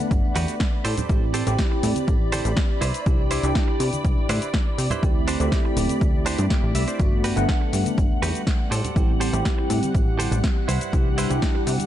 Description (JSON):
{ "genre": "filtered disco house", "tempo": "122 BPM", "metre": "4/4", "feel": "straight", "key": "G major", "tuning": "A4 = 439 Hz", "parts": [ { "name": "tine electric piano", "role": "accompaniment", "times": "0.0-11.9 s", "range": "A3 to F#5", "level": "-27 LUFS", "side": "equal", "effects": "phaser, sidechain pumping, low-pass filter" }, { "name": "string machine, full ensemble", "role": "sustained chords", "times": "0.0-11.9 s", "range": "G3 to B5", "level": "-32 LUFS", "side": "equal", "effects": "ensemble chorus, vintage 12-bit sampler grit, sidechain pumping, low-pass filter" }, { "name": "punchy analog drum machine", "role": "drums", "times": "0.0-11.9 s", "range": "hi-hat, shaker, snare drum", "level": "-30 LUFS", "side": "left 2 dB", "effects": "overdrive, sidechain pumping on hats, sidechain pumping on perc" }, { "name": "tambourine and congas", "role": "percussion", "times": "0.0-11.9 s", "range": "none", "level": "-34 LUFS", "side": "right 3 dB", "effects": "none" }, { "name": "direct-recorded clean electric guitar", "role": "riff", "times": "0.1-11.7 s", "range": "D4 to G5", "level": "-30 LUFS", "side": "right 5 dB", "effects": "sidechain pumping, low-pass filter" }, { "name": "plucky analog bass", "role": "bass", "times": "0.1-11.8 s", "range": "D1 to C3", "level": "-25 LUFS", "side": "equal", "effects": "sidechain pumping, low-pass filter" }, { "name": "electronic kick drum", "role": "drums", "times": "0.1-11.5 s", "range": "none", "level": "-22 LUFS", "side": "equal", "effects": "overdrive" } ], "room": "little or no reverb", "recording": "echo-heavy mix, nothing above 10.4 kHz", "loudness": "-20 LUFS", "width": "side -12 dB against mid", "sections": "0.0-11.9 A section", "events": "clean electric guitar fill 6.3-7.0", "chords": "0.0 Gmaj7; 0.8 Am7; 2.8 Cmaj7; 5.0 D7sus4; 7.0 Gmaj7; 8.7 Am7; 10.7 Cmaj7", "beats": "0.11 0.60 | 1.09 1.59 2.08 2.57 | 3.06 3.55 4.05 4.54 | 5.03 5.52 6.01 6.50 | 7.00 7.49 7.98 8.47 | 8.96 9.46 9.95 10.44 | 10.93 11.42" }